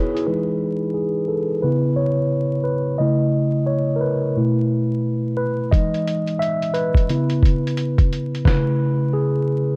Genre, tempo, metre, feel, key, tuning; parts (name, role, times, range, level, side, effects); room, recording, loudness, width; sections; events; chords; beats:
lo-fi hip hop; 88 BPM; 4/4; swing 61% on 16ths; E major; A4 = 440 Hz
mellow tine electric piano; accompaniment; 0.0-9.8 s; B2 to E5; -21 LUFS; equal; cassette tape, low-pass filter
lo-fi sampler-style drum kit; drums; 0.2-0.3, 5.7-8.7 s; hi-hat, kick drum, snare drum; -20 LUFS; equal
light reverb; dark, warm production, vinyl crackle; -20 LUFS; mono
0.3-9.8 A section
tine electric piano solo 0.3-9.8; filter sweep on tine electric piano 0.3-9.8
0.3 Emaj7; 1.6 C#m7; 3.0 C#m13; 4.4 B7sus4; 5.7 Emaj7; 7.1 C#m7
| 0.27 0.95 1.63 2.31 | 3.00 3.68 4.36 5.04 | 5.72 6.41 7.09 7.77 | 8.45 9.13